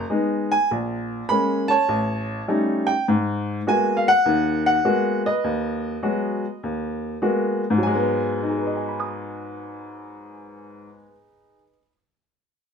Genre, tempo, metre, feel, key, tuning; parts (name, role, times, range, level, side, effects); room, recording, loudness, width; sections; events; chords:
solo jazz; 101 BPM; 4/4; swing 66% on 8ths; G# minor; A4 = 438 Hz
clear upright piano; solo; 0.0-11.9 s; A1 to D#6; -20 LUFS; equal
moderate studio reverb, RT60 0.6 s; minimal, uncompressed stereo recording; -20 LUFS; side -6 dB against mid
0.0-7.8 A section; 7.8-10.2 B section
0.0 B6; 0.7 A#m7; 1.9 A7#11; 3.1 G#m9; 7.8 G#m7